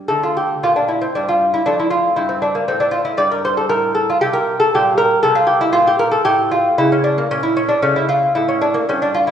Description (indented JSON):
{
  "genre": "classical, baroque-style dance for lute",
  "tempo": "116 BPM",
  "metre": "3/4",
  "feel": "rubato",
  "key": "D minor",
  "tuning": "A4 = 437 Hz",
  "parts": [
    { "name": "lute", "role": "solo", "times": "0.0-9.3 s", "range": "F2 to D5", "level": "-14 LUFS", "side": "equal", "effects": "none" }
  ],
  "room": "wet scoring stage reverb, RT60 1.7 s",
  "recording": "recorded in a church or concert hall, nothing above 10.3 kHz",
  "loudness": "-14 LUFS",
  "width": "side -8 dB against mid",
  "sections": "0.1-9.3 A section",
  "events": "none",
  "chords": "0.1 D5; 1.7 Fmaj13; 3.2 Gmadd9; 4.7 Gm/Bb; 6.3 A"
}